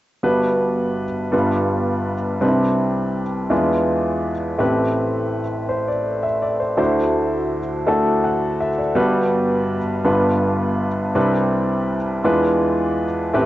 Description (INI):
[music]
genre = gospel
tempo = 55 BPM (dotted quarters)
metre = 6/8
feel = straight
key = G major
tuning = A4 = 439 Hz
[part]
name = clear upright piano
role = solo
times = 0.2-13.5 s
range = G1 to F#5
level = -17 LUFS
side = equal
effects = cassette tape
[sound]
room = moderate small room reverb, RT60 0.5 s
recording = home recording on cassette, nothing above 7.9 kHz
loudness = -17 LUFS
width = side -15 dB against mid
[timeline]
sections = 0.2-9.0 A section; 9.0-13.5 B section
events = none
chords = 0.2 Gmaj7; 1.3 G7; 2.4 Cmaj9; 3.5 E7b9; 4.6 Am9; 6.8 D9; 9.0 Gmaj7; 10.1 G7; 11.2 Cmaj9; 12.2 E7b9